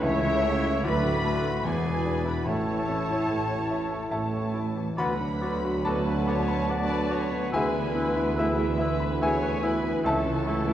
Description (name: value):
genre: classical, romantic movement for piano and orchestra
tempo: 72 BPM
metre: 3/4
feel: rubato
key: A major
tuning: A4 = 439 Hz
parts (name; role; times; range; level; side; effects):
- clear grand piano; melody; 0.0-10.7 s; C#2 to B5; -29 LUFS; left 2 dB; none
- warm symphonic violin section; melody; 0.0-10.7 s; D4 to B5; -40 LUFS; left 5 dB; none
- concert flute; second line; 0.0-10.6 s; E5 to C#6; -39 LUFS; left 3 dB; none
- warm clarinet; second line; 0.0-10.6 s; E4 to F#4; -37 LUFS; equal; none
- warm oboe; second line; 0.0-10.6 s; C#5 to E5; -38 LUFS; equal; none
- warm symphonic violin section; second line; 0.0-10.7 s; E5 to B5; -39 LUFS; left 4 dB; none
- mellow bassoon; accompaniment; 0.0-10.6 s; A3 to B3; -36 LUFS; equal; none
- rich symphonic viola section; accompaniment; 0.0-10.7 s; G#4 to D5; -35 LUFS; right 2 dB; none
- mellow French horn section; sustained chords; 0.0-10.7 s; A3 to E4; -37 LUFS; left 3 dB; none
- warm trombone section; sustained chords; 0.0-10.7 s; C#3 to B3; -34 LUFS; right 3 dB; none
- mellow trumpet section; stabs; 0.0-10.7 s; E4 to C#5; -37 LUFS; left 1 dB; none
- clear chamber double bass section; bass; 0.0-10.7 s; E1 to D2; -35 LUFS; right 3 dB; none
- mellow tuba; bass; 0.0-10.7 s; E1 to D2; -35 LUFS; right 2 dB; none
- warm symphonic cello section; bass; 0.0-10.7 s; C#2 to D3; -35 LUFS; right 3 dB; none
room: wet scoring stage reverb, RT60 1.6 s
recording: worn, warbling old tape, cassette tape, warbly pitch drift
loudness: -24 LUFS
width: side -11 dB against mid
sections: 0.0-5.0 A section; 5.0-10.7 B section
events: none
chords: 0.0 A/C#; 0.9 Bm7/D; 1.7 E7; 2.5 A; 5.0 Bm/D; 7.5 E7/D; 10.1 A/C#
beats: | 0.04 0.86 1.66 | 2.47 3.30 4.12 | 4.98 5.86 6.70 | 7.54 8.38 9.22 | 10.05